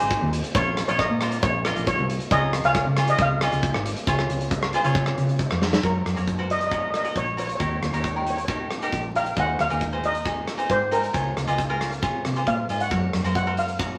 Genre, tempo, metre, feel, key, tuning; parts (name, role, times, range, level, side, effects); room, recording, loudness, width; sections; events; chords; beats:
calypso; 136 BPM; 4/4; straight; Db major; A4 = 436 Hz
cavaquinho; accompaniment; 0.0-14.0 s; Eb4 to Eb5; -30 LUFS; equal
fingered electric bass; bass; 0.0-14.0 s; Ab1 to Db3; -29 LUFS; equal
big rock drum kit; drums; 0.1-13.9 s; hi-hat, kick drum, rim click, snare drum; -30 LUFS; equal
steel pan; melody; 0.6-14.0 s; Bb4 to Gb5; -28 LUFS; equal
moderate studio ambience, RT60 0.5 s; vinyl crackle; -24 LUFS; mono
0.0-4.1 A section; 4.1-5.8 B section; 5.8-14.0 C section
drum fill 5.6
0.0 Ab; 0.6 Bbm; 2.3 Dbadd9; 4.1 Db; 5.8 Gb; 7.6 Eb; 9.4 Ab/Eb; 11.1 Db6; 12.9 Gb
0.11 | 0.55 0.99 1.43 1.87 | 2.31 2.75 3.19 3.63 | 4.07 4.51 4.95 5.39 | 5.83 6.28 6.72 7.16 | 7.60 8.04 8.49 8.93 | 9.37 9.82 10.26 10.70 | 11.14 11.59 12.03 12.47 | 12.91 13.36 13.80